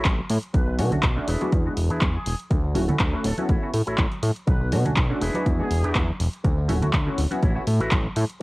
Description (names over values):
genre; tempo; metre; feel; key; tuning
filtered disco house; 122 BPM; 4/4; swing 55% on 16ths; unclear; A4 = 442 Hz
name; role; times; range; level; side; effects
electric guitar with an envelope filter; riff; 0.0-8.2 s; D4 to C#5; -31 LUFS; equal; sidechain pumping, low-pass filter, cassette tape
fat analog bass; bass; 0.0-8.2 s; D1 to B2; -24 LUFS; equal; sidechain pumping, low-pass filter
punchy analog drum machine; drums; 0.0-8.4 s; handclaps, hi-hat; -29 LUFS; equal; overdrive, sidechain pumping on hats, studio reverb, cassette tape, sidechain pumping on cymbals
electronic kick drum; drums; 0.1-8.0 s; none; -23 LUFS; equal; overdrive, studio reverb, cassette tape
congas and tambourine; percussion; 0.1-8.4 s; none; -31 LUFS; right 1 dB; sidechain pumping on perc, low-pass filter on perc
dark trumpet section; melody; 0.5-6.1 s; G#4 to B4; -36 LUFS; equal; sidechain pumping, low-pass filter, cassette tape
funky polysynth comp; accompaniment; 0.8-7.6 s; G#3 to F#4; -28 LUFS; equal; chorus, phaser, sidechain pumping, low-pass filter, cassette tape
room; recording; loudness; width
digital ambience; home recording on cassette; -20 LUFS; side -21 dB against mid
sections
0.0-8.4 A section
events
none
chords
0.0 A6; 0.5 Bm7; 1.3 E7; 2.5 Dmaj7; 3.5 A6; 4.5 Bm7; 5.2 E7; 6.4 Dmaj7; 7.4 A6